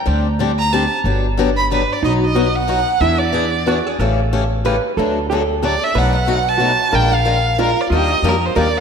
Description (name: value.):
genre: acoustic string swing (jazz manouche).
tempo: 184 BPM.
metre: 3/4.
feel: swing 59% on 8ths.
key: unclear.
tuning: A4 = 439 Hz.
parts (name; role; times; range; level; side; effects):
picked swing-style acoustic guitar; accompaniment; 0.1-8.7 s; B2 to Bb4; -20 LUFS; left 5 dB; wide subtle chorus.
upright bass; bass; 0.1-8.8 s; G1 to F2; -20 LUFS; equal; none.
warm violin; melody; 0.6-8.8 s; Bb4 to B5; -19 LUFS; right 2 dB; analog delay.
hollow-body jazz guitar; second line; 2.0-8.8 s; D#4 to B4; -22 LUFS; right 5 dB; analog delay.
room: moderate lush hall reverb, RT60 2.0 s, small room ambience.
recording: dreamy mix soaked in reverb.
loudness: -14 LUFS.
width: side -6 dB against mid.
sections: 0.0-2.0 A section; 2.0-8.8 B section.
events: violin solo 0.0-2.0.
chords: 0.1 D7sus4; 1.1 Gmaj7; 2.0 B; 3.0 E7; 4.0 A7; 5.0 D; 6.0 B7; 6.9 Bb7; 7.9 Ebmaj7.